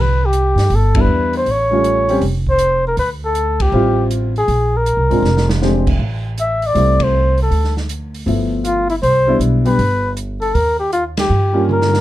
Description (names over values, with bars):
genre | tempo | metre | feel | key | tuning
jazz, small-group swing and bop | 158 BPM | 4/4 | swing 66% on 8ths | C major | A4 = 441 Hz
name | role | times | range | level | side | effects
trumpet with bucket mute | melody | 0.0-12.0 s | E4 to E5 | -16 LUFS | left 1 dB | none
upright bass | bass | 0.0-12.0 s | E#1 to G2 | -17 LUFS | right 1 dB | none
open jazz drum kit | drums | 0.3-12.0 s | crash cymbal, hi-hat, kick drum, ride cymbal, snare drum, toms | -23 LUFS | right 1 dB | none
warm baby grand piano | accompaniment | 0.9-12.0 s | F3 to G4 | -19 LUFS | left 1 dB | none
room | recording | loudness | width
little or no reverb | dark, warm production | -13 LUFS | side -14 dB against mid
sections
0.0-12.0 A section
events
band accent 0.9, 3.5, 6.9, 11.1; drum fill 5.2-5.6, 11.7-12.0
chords
0.0 Cmaj7; 1.5 A7alt; 3.0 Dm11; 4.5 Bb9; 6.0 Am7; 7.5 D5; 8.3 G13; 9.0 Cmaj7; 10.5 Eb7